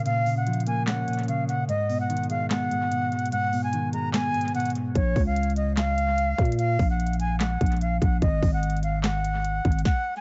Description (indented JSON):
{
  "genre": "hip hop, trap",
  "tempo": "147 BPM",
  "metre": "4/4",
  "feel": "half-time",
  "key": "Bb phrygian",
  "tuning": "A4 = 437 Hz",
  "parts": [
    { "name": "mellow electric guitar", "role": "accompaniment", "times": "0.0-5.0 s", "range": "Ab2 to Db4", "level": "-29 LUFS", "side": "equal", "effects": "none" },
    { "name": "breathy bright concert flute", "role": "melody", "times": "0.1-10.2 s", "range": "Db5 to Bb5", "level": "-30 LUFS", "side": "equal", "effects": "dub echo" },
    { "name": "trap drum kit", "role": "drums", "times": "0.1-10.0 s", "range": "handclaps, hi-hat, kick drum, snare drum", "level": "-29 LUFS", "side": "equal", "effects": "none" },
    { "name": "growling 808-style bass", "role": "bass", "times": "5.0-9.8 s", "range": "Ab1 to Bb2", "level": "-27 LUFS", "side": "equal", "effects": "none" }
  ],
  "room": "digital ambience",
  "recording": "echo-heavy mix, nothing above 7.9 kHz",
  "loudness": "-25 LUFS",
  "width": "mono",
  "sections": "0.0-10.2 A section",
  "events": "break 0.0-5.0",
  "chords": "0.0 Bbm; 1.7 Abm; 5.0 Bbm; 8.2 Gbsus2/Ab"
}